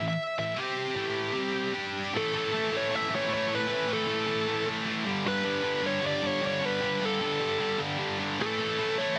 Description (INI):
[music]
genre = rock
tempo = 154 BPM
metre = 4/4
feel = straight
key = unclear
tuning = A4 = 439 Hz
[part]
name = bluesy overdriven lead guitar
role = melody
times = 0.0-9.2 s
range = G4 to E5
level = -32 LUFS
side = equal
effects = distortion, tape echo
[part]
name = high-gain distorted guitar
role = riff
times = 0.0-9.2 s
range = G2 to G4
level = -32 LUFS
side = equal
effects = distortion
[sound]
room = light reverb, digital ambience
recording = dense, heavily limited modern master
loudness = -29 LUFS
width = mono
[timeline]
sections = 0.0-2.1 A section; 2.1-9.2 B section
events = none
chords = 0.0 A5; 0.6 C5; 1.0 A5; 1.4 C5; 1.7 G5; 2.1 A5; 5.1 G; 8.4 A5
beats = 0.17 | 0.57 0.96 1.35 1.75 | 2.14 2.53 2.92 3.32 | 3.71 4.10 4.49 4.88 | 5.27 5.66 6.05 6.44 | 6.83 7.22 7.61 8.00 | 8.39 8.78 9.17